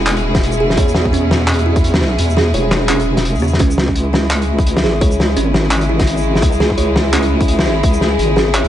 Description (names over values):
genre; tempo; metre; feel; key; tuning
half-time drum and bass; 170 BPM; 4/4; swing 57% on 16ths, half-time; C# minor; A4 = 442 Hz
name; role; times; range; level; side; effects
rich chamber string section; sustained chords; 0.0-8.7 s; B2 to G#4; -20 LUFS; left 1 dB; sidechain pumping
kalimba; arpeggios; 0.0-8.7 s; C#3 to C#5; -21 LUFS; right 3 dB; dub echo
deep soft wobble bass; bass; 0.0-8.7 s; E1 to E2; -17 LUFS; equal; chorus
crunchy breakbeat drum kit; drums; 0.1-8.7 s; handclaps, hi-hat, shaker, snare drum; -18 LUFS; left 1 dB; none
electronic kick drum; drums; 0.3-7.9 s; none; -16 LUFS; equal; none
metallic inharmonic drone; texture; 4.2-8.7 s; E4; -25 LUFS; left 4 dB; chorus, built-in reverb
room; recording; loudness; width
light reverb; nothing above 10.5 kHz; -12 LUFS; side -11 dB against mid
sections
0.0-8.7 A section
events
kick drops out 2.2-3.6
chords
0.0 E; 3.6 C#m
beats
0.07 0.43 | 0.78 1.13 1.48 1.84 | 2.19 2.54 2.90 3.25 | 3.60 3.96 4.31 4.66 | 5.01 5.37 5.72 6.07 | 6.43 6.78 7.13 7.48 | 7.84 8.19 8.54